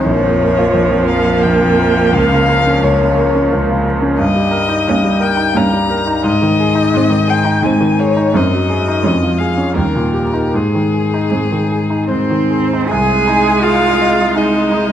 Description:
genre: classical, slow romantic movement for piano quartet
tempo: 73-89 BPM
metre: 3/4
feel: rubato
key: Ab major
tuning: A4 = 443 Hz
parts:
  - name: rich violin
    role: melody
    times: 0.0-14.9 s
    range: Ab4 to Bb5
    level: -18 LUFS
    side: left 5 dB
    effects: none
  - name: bright concert grand piano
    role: accompaniment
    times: 0.0-14.9 s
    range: Bb1 to Eb5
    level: -14 LUFS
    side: equal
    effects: none
  - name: clear viola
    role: accompaniment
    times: 0.0-14.9 s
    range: Ab3 to Db4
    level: -19 LUFS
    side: right 3 dB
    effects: none
  - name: clear cello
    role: second line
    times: 0.1-14.9 s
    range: F3 to Ab4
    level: -20 LUFS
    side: right 5 dB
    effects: none
room: moderate concert hall reverb, RT60 2.3 s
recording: dark, warm production, vinyl crackle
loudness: -11 LUFS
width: side -10 dB against mid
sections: 0.0-12.9 A section; 12.9-14.9 B section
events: none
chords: 0.1 Bbm; 2.1 Bbm/Db; 4.2 Eb7/G; 6.3 Ab; 8.3 Ab7/Gb; 9.0 Db/F; 9.8 Eb7; 10.5 Ab; 12.9 Ab/C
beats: | 0.06 0.75 1.44 | 2.13 2.83 3.51 | 4.20 4.87 5.56 | 6.27 6.96 7.65 | 8.35 9.05 9.76 | 10.53 11.31 12.09 | 12.88 13.63 14.35

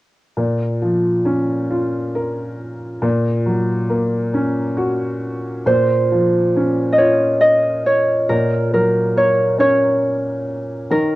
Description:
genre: children's music, lullaby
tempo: 46 BPM (dotted quarters)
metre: 6/8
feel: rubato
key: Bb minor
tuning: A4 = 440 Hz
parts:
  - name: felt-muted upright piano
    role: accompaniment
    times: 0.4-11.2 s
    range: Bb2 to Bb4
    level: -18 LUFS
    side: equal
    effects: none
  - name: Celtic harp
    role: melody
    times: 5.7-11.2 s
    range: Bb4 to Eb5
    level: -15 LUFS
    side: equal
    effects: none
room: moderate booth ambience, RT60 0.2 s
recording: home recording on cassette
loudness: -15 LUFS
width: side -18 dB against mid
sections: 0.4-5.7 A section; 5.7-11.2 B section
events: none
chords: 0.4 Bbm; 3.0 Gb/Bb; 5.7 Bbmadd9; 8.3 Gb/Bb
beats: | 0.37 1.71 | 3.03 4.34 | 5.67 7.00 | 8.31 9.61 | 10.91

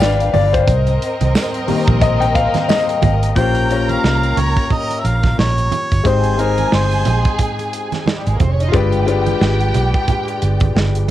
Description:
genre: lush 1970s-style soul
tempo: 89 BPM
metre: 4/4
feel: swing 58% on 16ths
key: Bb dorian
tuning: A4 = 440 Hz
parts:
  - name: warm studio violin section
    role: second line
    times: 0.0-11.1 s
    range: G3 to Bb5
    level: -23 LUFS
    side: right 2 dB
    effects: cassette tape
  - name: warm concert grand piano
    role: accompaniment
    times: 0.0-11.1 s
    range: Eb3 to G5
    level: -19 LUFS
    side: left 6 dB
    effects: cassette tape
  - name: vintage muted fingered electric bass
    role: bass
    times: 0.0-11.1 s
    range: F1 to Db2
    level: -17 LUFS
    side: right 1 dB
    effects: none
  - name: modern studio drum kit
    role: drums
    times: 0.0-11.1 s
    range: hi-hat, kick drum, snare drum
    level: -20 LUFS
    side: right 1 dB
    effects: cassette tape
  - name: congas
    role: percussion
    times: 0.0-11.1 s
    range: none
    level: -25 LUFS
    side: right 10 dB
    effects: none
  - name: tambourine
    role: percussion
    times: 0.0-2.9 s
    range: none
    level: -34 LUFS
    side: right 13 dB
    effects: none
  - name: clear harmonica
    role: melody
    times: 3.4-7.4 s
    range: Bb4 to G5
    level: -21 LUFS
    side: right 1 dB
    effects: none
room: little or no reverb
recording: home recording on cassette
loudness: -13 LUFS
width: side -13 dB against mid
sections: 0.0-3.4 A section; 3.4-11.1 B section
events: grand piano solo 0.0-3.4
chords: 0.0 G7b9; 0.7 Cm7; 3.4 Bbm69; 6.0 Abmaj7; 8.7 G7b9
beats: 0.00 | 0.67 1.34 2.02 2.69 | 3.36 4.03 4.70 5.38 | 6.05 6.72 7.39 8.07 | 8.74 9.41 10.09 10.76

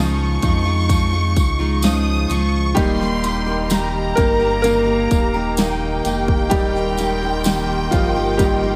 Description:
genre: pop ballad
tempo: 64 BPM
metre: 4/4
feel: straight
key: unclear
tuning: A4 = 440 Hz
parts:
  - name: warm studio violin section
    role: second line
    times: 0.0-8.8 s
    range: G5 to Eb6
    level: -27 LUFS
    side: equal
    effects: delay, slapback echo
  - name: clear concert grand piano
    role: accompaniment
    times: 0.0-8.8 s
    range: Eb3 to Bb4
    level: -24 LUFS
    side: equal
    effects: slapback echo
  - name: picked steel-string acoustic guitar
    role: arpeggios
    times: 0.0-8.8 s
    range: Db3 to G4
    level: -26 LUFS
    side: equal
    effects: delay, slapback echo
  - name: sub bass with octave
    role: bass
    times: 0.0-8.8 s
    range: Eb1 to F2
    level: -25 LUFS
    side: equal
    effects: none
  - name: pop drum kit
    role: drums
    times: 0.4-8.6 s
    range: hi-hat, kick drum, snare drum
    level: -23 LUFS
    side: equal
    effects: none
  - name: tambourine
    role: percussion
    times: 0.4-8.6 s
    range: none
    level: -37 LUFS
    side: equal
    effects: none
  - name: airy breathy pad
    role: sustained chords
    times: 2.8-8.8 s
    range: G4 to C6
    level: -29 LUFS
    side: equal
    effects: chorus
room: moderate concert hall reverb, RT60 1.8 s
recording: big arena sound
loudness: -18 LUFS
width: mono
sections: 0.0-8.8 A section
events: grand piano solo 0.0-8.8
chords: 0.0 Dbadd9; 2.8 Eb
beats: 0.90 1.83 | 2.77 3.71 4.65 5.58 | 6.52 7.46 8.40

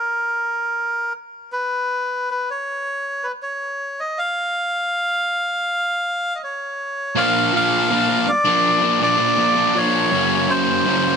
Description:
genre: rock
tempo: 80 BPM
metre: 4/4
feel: straight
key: unclear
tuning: A4 = 441 Hz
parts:
  - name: melodica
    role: melody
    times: 0.0-11.2 s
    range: Bb4 to F5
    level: -20 LUFS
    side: equal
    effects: digital delay
  - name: fuzz guitar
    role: riff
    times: 7.2-11.2 s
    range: Gb2 to D4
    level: -18 LUFS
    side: equal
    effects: distortion
room: moderate studio reverb, RT60 0.6 s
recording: none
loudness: -18 LUFS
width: side -6 dB against mid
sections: 0.0-7.2 A section; 7.2-11.2 B section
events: none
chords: 0.0 N.C.; 7.2 Bb; 10.1 Gb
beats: 0.41 | 1.16 1.92 2.67 3.42 | 4.17 4.92 5.67 6.42 | 7.16 7.91 8.65 9.39 | 10.13 10.87

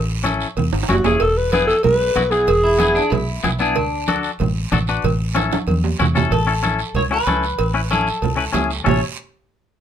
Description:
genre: latin, cumbia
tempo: 188 BPM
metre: 4/4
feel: straight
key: A major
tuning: A4 = 440 Hz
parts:
  - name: fingered electric bass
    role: bass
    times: 0.0-9.0 s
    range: E1 to E2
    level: -22 LUFS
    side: equal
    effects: none
  - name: twangy electric guitar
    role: accompaniment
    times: 0.2-9.0 s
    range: B3 to B4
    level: -21 LUFS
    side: left 6 dB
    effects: none
  - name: guiro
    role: percussion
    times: 0.2-8.9 s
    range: none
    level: -32 LUFS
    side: right 7 dB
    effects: none
  - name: congas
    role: percussion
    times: 0.3-8.9 s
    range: none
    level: -24 LUFS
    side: right 4 dB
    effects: none
  - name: cowbell and timbales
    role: percussion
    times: 0.3-8.9 s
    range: none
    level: -25 LUFS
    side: right 6 dB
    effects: none
  - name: raspy alto saxophone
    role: melody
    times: 0.9-3.3 s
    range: F#4 to B4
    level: -16 LUFS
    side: equal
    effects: none
  - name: clean electric guitar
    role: second line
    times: 2.6-4.2, 6.3-9.0 s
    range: D4 to C#5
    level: -23 LUFS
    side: left 2 dB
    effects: none
room: moderate studio ambience, RT60 0.5 s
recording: minimal, uncompressed stereo recording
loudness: -16 LUFS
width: side -9 dB against mid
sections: 0.0-6.3 A section; 6.3-8.9 B section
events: drum fill 0.7-1.2, 5.4-6.3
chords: 0.0 A; 1.2 E; 3.8 D; 5.0 A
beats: 0.25 0.57 0.89 | 1.21 1.52 1.84 2.16 | 2.48 2.80 3.12 3.44 | 3.76 4.08 4.40 4.71 | 5.04 5.35 5.67 5.99 | 6.31 6.63 6.95 7.27 | 7.59 7.91 8.22 8.54 | 8.86

